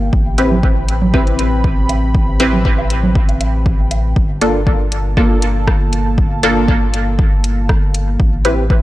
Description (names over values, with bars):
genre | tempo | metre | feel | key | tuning
dub techno | 119 BPM | 4/4 | straight | unclear | A4 = 440 Hz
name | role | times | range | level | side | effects
dark analog pad | sustained chords | 0.0-8.8 s | Bb3 to B5 | -24 LUFS | equal | chorus, sidechain pumping
filtered dub chord stab | stabs | 0.0-8.6 s | Bb3 to B4 | -17 LUFS | equal | chorus, phaser, dub echo
soft dub sub bass | bass | 0.0-8.8 s | G1 | -18 LUFS | equal | sidechain pumping
electronic kick drum | drums | 0.1-8.8 s | none | -15 LUFS | equal | overdrive, studio reverb
deep house drum kit | drums | 0.4-8.6 s | hi-hat, rim click | -23 LUFS | equal | overdrive, studio reverb
congas and woodblock | percussion | 0.5-4.0 s | none | -20 LUFS | right 3 dB | overdrive, sidechain pumping on perc, studio reverb, dub echo
room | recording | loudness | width
little or no reverb | dry, gritty hardware recording, transformer saturation, cassette tape | -12 LUFS | side -16 dB against mid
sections
0.0-4.2 A section; 4.2-8.8 A section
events
none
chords
0.1 Am9; 4.2 Gm9; 8.2 Am9